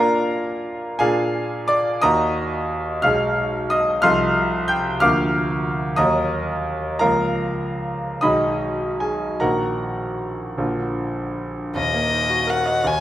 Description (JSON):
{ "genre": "classical, romantic duo for violin and grand piano", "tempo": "47-63 BPM (dotted quarters)", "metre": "6/8", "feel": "rubato", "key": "Eb minor", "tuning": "A4 = 440 Hz", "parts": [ { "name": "bright concert grand piano", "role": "accompaniment", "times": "0.0-13.0 s", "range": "Eb1 to G6", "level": "-19 LUFS", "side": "equal", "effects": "none" }, { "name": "warm violin", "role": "melody", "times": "11.8-13.0 s", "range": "Eb5 to Ab5", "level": "-20 LUFS", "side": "left 4 dB", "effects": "none" } ], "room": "moderate recital hall reverb, RT60 1.6 s", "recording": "none", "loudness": "-19 LUFS", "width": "side -13 dB against mid", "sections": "0.0-11.8 A section; 11.8-13.0 B section", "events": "none", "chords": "0.0 Bb; 1.0 Bb7; 2.0 Ebm; 3.0 Abm/Cb; 4.0 F7/C; 5.0 Bb/D; 6.0 Ebm; 7.0 Bbm/Db; 8.2 Abm/Cb; 9.4 Ebm/Bb; 10.6 Bb; 11.8 Ebm", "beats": "| 1.01 2.04 | 3.05 4.04 | 5.02 5.98 | 7.01 8.23 | 9.41 10.59 | 11.76 12.86" }